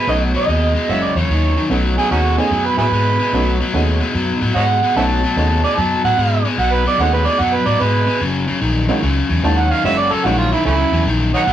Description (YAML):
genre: electric blues shuffle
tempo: 147 BPM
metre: 4/4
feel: swing 66% on 8ths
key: B mixolydian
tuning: A4 = 439 Hz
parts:
  - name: electric guitar through a small old amp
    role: melody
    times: 0.0-1.1 s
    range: D#5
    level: -20 LUFS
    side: right 2 dB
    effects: tremolo
  - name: biting overdriven guitar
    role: riff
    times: 0.0-11.5 s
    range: F#2 to G#3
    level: -19 LUFS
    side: left 2 dB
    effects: none
  - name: honky-tonk upright piano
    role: accompaniment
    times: 0.1-10.5 s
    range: G#3 to F#4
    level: -23 LUFS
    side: right 2 dB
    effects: none
  - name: vintage muted fingered electric bass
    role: bass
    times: 0.1-11.5 s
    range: F#1 to A2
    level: -19 LUFS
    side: equal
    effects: none
  - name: overdriven harmonica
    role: second line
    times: 0.9-11.5 s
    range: A3 to A5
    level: -18 LUFS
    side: right 4 dB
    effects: none
room: moderate studio reverb, RT60 0.5 s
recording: rough rehearsal-room recording, warm saturation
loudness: -14 LUFS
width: side -11 dB against mid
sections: 0.0-1.7 A section; 1.7-11.5 B section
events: harmonica solo 1.7-11.5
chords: 0.0 B9; 0.9 F#9; 1.7 B9; 8.2 F#9